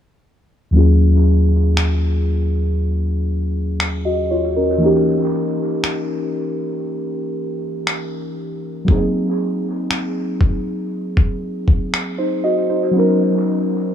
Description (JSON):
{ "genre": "contemporary R&B", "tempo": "59 BPM", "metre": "4/4", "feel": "straight", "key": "Eb minor", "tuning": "A4 = 440 Hz", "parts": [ { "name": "muted felt-like synth keys", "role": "accompaniment", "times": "0.7-13.9 s", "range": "Eb2 to Eb5", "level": "-17 LUFS", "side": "equal", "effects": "chorus, low-pass filter, dub echo" }, { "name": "dusty soul sampler-style drum kit", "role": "drums", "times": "1.8-12.2 s", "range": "finger snaps, kick drum", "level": "-17 LUFS", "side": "equal", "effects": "overdrive" } ], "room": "light reverb", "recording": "echo-heavy mix, small room ambience", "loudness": "-16 LUFS", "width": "side -9 dB against mid", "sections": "0.7-13.9 A section", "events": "filter sweep on synth keys 0.7-13.9", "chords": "0.7 Ebm11; 4.8 Eb7b9; 8.9 Ab9; 12.9 Bmaj9" }